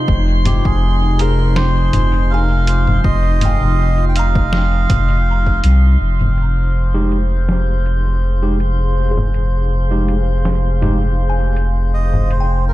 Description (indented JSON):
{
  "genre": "ambient dub",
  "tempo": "81 BPM",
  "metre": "4/4",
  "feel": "swing 54% on 16ths",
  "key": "F minor",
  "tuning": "A4 = 439 Hz",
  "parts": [
    { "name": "warm analog pad", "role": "sustained chords", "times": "0.0-12.7 s", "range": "C3 to F5", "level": "-24 LUFS", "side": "left 1 dB", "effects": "wide subtle chorus" },
    { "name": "drifting glass-harmonics texture", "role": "texture", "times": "0.0-12.7 s", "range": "C5 to C6", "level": "-28 LUFS", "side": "equal", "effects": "chorus, built-in reverb" },
    { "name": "soft dub sub bass", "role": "bass", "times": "0.1-12.7 s", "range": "F1 to C2", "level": "-15 LUFS", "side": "equal", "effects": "none" },
    { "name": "electronic kick drum", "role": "drums", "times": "0.1-5.6 s", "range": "none", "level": "-19 LUFS", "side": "equal", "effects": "overdrive, studio reverb" },
    { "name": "melodica", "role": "melody", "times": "0.5-5.6, 11.9-12.7 s", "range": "G4 to G5", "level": "-23 LUFS", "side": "right 2 dB", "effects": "dub echo" },
    { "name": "lo-fi sampler-style drum kit", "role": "drums", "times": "0.5-12.5 s", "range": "congas, hi-hat, snare drum", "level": "-23 LUFS", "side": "left 1 dB", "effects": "overdrive, low-pass filter on hats, studio reverb, low-pass filter on perc, low-pass filter on snare, dub echo" },
    { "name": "kalimba", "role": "arpeggios", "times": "1.2-12.7 s", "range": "Ab4 to Bb5", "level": "-30 LUFS", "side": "left 2 dB", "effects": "vintage 12-bit sampler grit, low-pass filter, dub echo" },
    { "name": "overdriven tine electric piano", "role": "stabs", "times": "6.9-11.0 s", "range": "Ab3 to G4", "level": "-25 LUFS", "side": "right 2 dB", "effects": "low-pass filter, dub echo" }
  ],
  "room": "little or no reverb",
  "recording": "none",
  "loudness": "-13 LUFS",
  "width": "side -16 dB against mid",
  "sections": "0.0-6.0 A section; 6.0-12.7 B section",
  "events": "none",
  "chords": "0.0 Fm9"
}